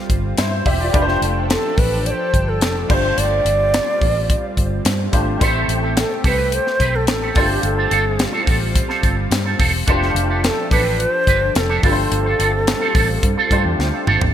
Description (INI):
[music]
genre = polished 1980s jazz-funk pop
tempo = 107 BPM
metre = 4/4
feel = straight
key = unclear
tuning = A4 = 442 Hz
[part]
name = clear grand piano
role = accompaniment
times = 0.0-14.3 s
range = A3 to E5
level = -24 LUFS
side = left 1 dB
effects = ensemble chorus
[part]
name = lush unison pad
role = sustained chords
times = 0.0-14.3 s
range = F3 to A4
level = -28 LUFS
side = right 1 dB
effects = chorus
[part]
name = vintage muted fingered electric bass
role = bass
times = 0.1-14.3 s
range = E1 to G2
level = -21 LUFS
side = equal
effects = none
[part]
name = tight funk drum kit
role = drums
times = 0.1-14.3 s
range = crash cymbal, hi-hat, kick drum, snare drum, toms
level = -20 LUFS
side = equal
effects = gated reverb
[part]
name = bansuri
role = melody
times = 1.5-13.8 s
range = G4 to D5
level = -21 LUFS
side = equal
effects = none
[part]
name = electric guitar with an envelope filter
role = riff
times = 5.4-14.2 s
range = C4 to B4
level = -22 LUFS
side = right 5 dB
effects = ensemble chorus
[sound]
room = light reverb, small room ambience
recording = bright 1980s-style digital production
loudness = -15 LUFS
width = side -10 dB against mid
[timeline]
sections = 0.0-14.3 A section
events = drum fill 13.8-14.3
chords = 0.0 G9sus4; 0.9 F69; 2.9 G9sus4; 5.4 Am7; 7.4 G9sus4; 9.9 F69; 11.8 G9sus4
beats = 0.38 | 0.94 1.50 2.06 2.62 | 3.18 3.73 4.29 4.85 | 5.41 5.97 6.53 7.08 | 7.64 8.20 8.76 9.32 | 9.88 10.44 10.99 11.55 | 12.11 12.67 13.23 13.79